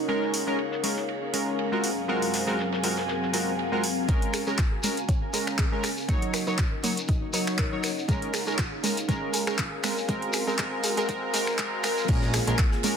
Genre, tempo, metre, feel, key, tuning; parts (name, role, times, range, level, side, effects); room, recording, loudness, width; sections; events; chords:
deep house; 120 BPM; 4/4; swing 55% on 16ths; Bb minor; A4 = 440 Hz
dark analog pad; sustained chords; 0.0-13.0 s; Gb3 to F5; -35 LUFS; left 1 dB; chorus, sidechain pumping
ethereal airy pad; texture; 0.0-13.0 s; C4 to Ab5; -34 LUFS; left 2 dB; ensemble chorus, built-in reverb, phaser, sidechain pumping
warm analog keys; stabs; 0.1-13.0 s; Gb3 to Db5; -29 LUFS; right 1 dB; chorus, sidechain pumping, digital delay
damped 70s drum kit; drums; 0.1-4.0, 12.1-13.0 s; ride cymbal, snare drum; -38 LUFS; right 2 dB; sidechain pumping on cymbals, high-pass filter on cymbals, low-pass filter on cymbals, sidechain pumping on hats, high-pass filter on hats, low-pass filter on hats, high-pass filter on snare, low-pass filter on snare, high-pass filter on room, low-pass filter on room
deep house drum kit; drums; 0.3-12.9 s; crash cymbal, finger snaps, handclaps, hi-hat; -31 LUFS; equal; high-pass filter on hats, high-pass filter on snare, high-pass filter on cymbals
soft round pluck; arpeggios; 4.1-12.9 s; Ab3 to Eb5; -35 LUFS; right 3 dB; chorus, vintage 12-bit sampler grit, sidechain pumping, digital delay
electronic kick drum; drums; 4.1-12.7 s; -26 LUFS; equal
shekere; percussion; 4.1-12.9 s; -35 LUFS; left 2 dB
smooth synth bass; bass; 12.1-12.5 s; Bb1; -27 LUFS; equal; sidechain pumping
light reverb, studio ambience; dense, heavily limited modern master, high-pass filter; -24 LUFS; side -7 dB against mid
0.0-4.1 A section; 4.1-12.1 B section
build-up 4.1-12.1; filter sweep on analog synth pad 4.1-12.1; filter sweep on synth arpeggio sound 4.1-12.1; filter sweep 4.1-12.1
0.1 Bbm7; 1.8 Ab13; 4.1 Bbm7; 6.1 Ebm7; 8.1 Bbm7; 9.8 Ab13; 12.1 Bbm7